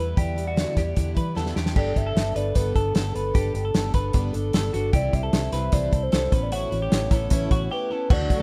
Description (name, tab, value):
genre	jangly indie pop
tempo	151 BPM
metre	4/4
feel	straight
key	unclear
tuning	A4 = 440 Hz
part	hollow clarinet-like synth lead	melody	0.0-8.4 s	A4 to E5	-32 LUFS	equal	chorus
part	picked plugged-in twelve-string acoustic guitar	accompaniment	0.0-8.4 s	A2 to C5	-33 LUFS	equal	none
part	twelve-string electric guitar	arpeggios	0.0-8.4 s	F#4 to B4	-35 LUFS	equal	none
part	vintage muted fingered electric bass	bass	0.0-8.4 s	G1 to E3	-29 LUFS	equal	none
part	loose indie drum kit	drums	0.2-8.4 s	crash cymbal, hi-hat, kick drum, snare drum	-25 LUFS	equal	none
part	lush unison pad	sustained chords	8.1-8.4 s	D3 to F#4	-34 LUFS	equal	chorus
room	light reverb, studio ambience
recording	rough home demo mix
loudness	-24 LUFS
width	mono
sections	0.0-1.8 A section; 1.8-8.1 B section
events	drum fill 1.4-1.8; break 7.7-8.1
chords	0.0 Em7; 1.8 Gadd9; 4.9 C; 6.3 Aadd9